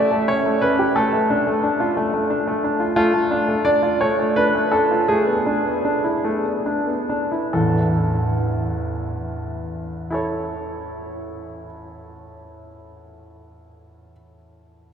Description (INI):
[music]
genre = classical-period piano sonatina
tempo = 45-60 BPM (dotted quarters)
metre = 6/8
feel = rubato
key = A major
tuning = A4 = 437 Hz
[part]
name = clear grand piano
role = solo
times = 0.0-14.9 s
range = A1 to D5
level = -19 LUFS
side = equal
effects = none
[sound]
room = wet cathedral reverb, RT60 6.4 s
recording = heard from further back in the room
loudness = -18 LUFS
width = side -8 dB against mid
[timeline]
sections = 0.0-7.5 A section; 7.5-12.6 B section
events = slowing down 2.0-7.5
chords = 0.0 A7; 1.0 Dm/A; 5.1 E7/A; 7.5 A